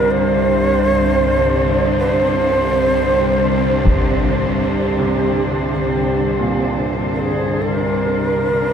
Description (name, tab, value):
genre	dark ambient drone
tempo	64 BPM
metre	4/4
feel	straight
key	unclear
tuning	A4 = 445 Hz
part	mellow shakuhachi	melody	0.0-8.7 s	G4 to C5	-18 LUFS	right 2 dB	tape echo
part	warm studio cello section	sustained chords	0.0-8.7 s	C3 to C5	-22 LUFS	equal	none
part	clear concert grand piano	arpeggios	0.0-8.7 s	Bb2 to C3	-26 LUFS	right 3 dB	none
part	bowed-like drone	drone	0.0-8.7 s	C2 to G2	-19 LUFS	left 1 dB	built-in reverb
part	taiko ensemble	percussion	3.9-4.0 s	none	-20 LUFS	equal	low-pass filter on perc
room	wet cathedral reverb, RT60 5.1 s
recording	dark, warm production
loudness	-14 LUFS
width	side -8 dB against mid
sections	0.0-8.7 A section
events	none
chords	0.0 Csus2